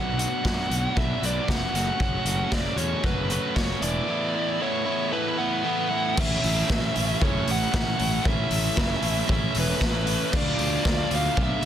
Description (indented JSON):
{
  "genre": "indie rock",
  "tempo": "115 BPM",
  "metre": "4/4",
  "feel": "straight",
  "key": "A major",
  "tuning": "A4 = 441 Hz",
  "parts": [
    { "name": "bluesy overdriven lead guitar", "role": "melody", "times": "0.0-11.6 s", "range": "B4 to F#5", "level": "-28 LUFS", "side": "equal", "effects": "distortion" },
    { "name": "biting overdriven guitar", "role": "riff", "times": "0.0-11.7 s", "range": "A2 to F#4", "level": "-27 LUFS", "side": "right 1 dB", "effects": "none" },
    { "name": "fuzz fingered electric bass", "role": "bass", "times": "0.0-11.7 s", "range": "E1 to F#2", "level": "-29 LUFS", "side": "equal", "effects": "overdrive" },
    { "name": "raw garage drum kit", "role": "drums", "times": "0.2-11.7 s", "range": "crash cymbal, hi-hat, kick drum, snare drum", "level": "-26 LUFS", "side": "equal", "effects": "none" }
  ],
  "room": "studio ambience",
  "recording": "dense, heavily limited modern master",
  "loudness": "-22 LUFS",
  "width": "side -10 dB against mid",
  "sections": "0.0-6.2 A section; 6.2-11.7 B section",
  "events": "none",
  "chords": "0.0 Bm; 1.7 F#m; 3.8 Esus4; 6.2 A; 10.3 Dm"
}